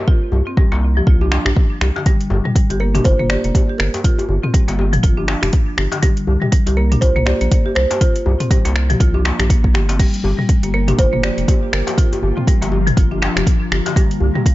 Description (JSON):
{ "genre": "afro house", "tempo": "121 BPM", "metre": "4/4", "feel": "swing 58% on 16ths", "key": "G minor", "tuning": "A4 = 440 Hz", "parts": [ { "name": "kalimba", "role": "melody", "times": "0.0-12.2 s", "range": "Bb4 to D5", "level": "-23 LUFS", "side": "right 1 dB", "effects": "vintage 12-bit sampler grit, dub echo" }, { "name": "marimba with hard mallets", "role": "arpeggios", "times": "0.1-14.5 s", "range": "D3 to G4", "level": "-23 LUFS", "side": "equal", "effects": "sidechain pumping, dub echo" }, { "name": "electronic kick drum", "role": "drums", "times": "0.1-14.5 s", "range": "none", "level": "-14 LUFS", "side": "equal", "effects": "none" }, { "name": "round analog bass", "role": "bass", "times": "0.3-14.3 s", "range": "F1 to C2", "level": "-18 LUFS", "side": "equal", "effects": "sidechain pumping" }, { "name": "djembe", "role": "percussion", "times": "0.3-14.4 s", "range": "none", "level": "-25 LUFS", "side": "left 3 dB", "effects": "none" }, { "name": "deep house drum kit", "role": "drums", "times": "1.3-14.5 s", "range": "crash cymbal, finger snaps, hi-hat, toms", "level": "-22 LUFS", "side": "left 1 dB", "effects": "none" }, { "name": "ethereal airy pad", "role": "sustained chords", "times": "10.7-14.5 s", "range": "F3 to G4", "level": "-26 LUFS", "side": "left 2 dB", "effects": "ensemble chorus, built-in reverb, phaser, sidechain pumping" } ], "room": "digital ambience", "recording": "nothing above 7.6 kHz", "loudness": "-13 LUFS", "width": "side -17 dB against mid", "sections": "0.0-14.5 A section", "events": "none", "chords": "0.0 C5; 2.1 G7(no3); 6.0 C5; 10.0 Gm7; 14.0 Cm7" }